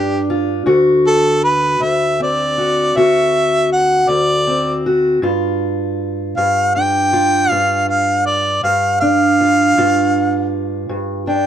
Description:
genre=acoustic country blues, solo or duo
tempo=53 BPM (dotted quarters)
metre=12/8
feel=straight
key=unclear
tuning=A4 = 440 Hz
part: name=warm harmonica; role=melody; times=0.0-11.5 s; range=G4 to G5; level=-15 LUFS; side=equal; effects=plate reverb
part: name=fingerpicked steel-string acoustic guitar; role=accompaniment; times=0.0-11.5 s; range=D2 to F#4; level=-16 LUFS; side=equal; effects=none
room=light reverb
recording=dark, warm production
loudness=-13 LUFS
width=side -9 dB against mid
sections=0.0-11.5 A section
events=none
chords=0.0 G5; 0.7 D7; 5.2 G5

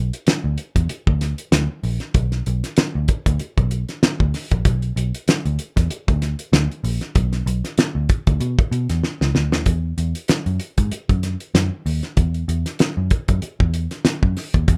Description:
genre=funk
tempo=96 BPM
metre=4/4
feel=swing 56% on 16ths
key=B dorian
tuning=A4 = 440 Hz
part: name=vintage muted picked electric bass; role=bass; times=0.0-14.8 s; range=A#1 to B2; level=-23 LUFS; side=equal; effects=none
part: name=cloth-damped thuddy drum kit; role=drums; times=0.1-14.8 s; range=hi-hat, kick drum, snare drum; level=-21 LUFS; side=equal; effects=none
room=light reverb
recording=rough home demo mix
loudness=-21 LUFS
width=mono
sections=0.0-9.7 A section; 9.7-14.8 B section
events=drum fill 9.0-9.7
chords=none

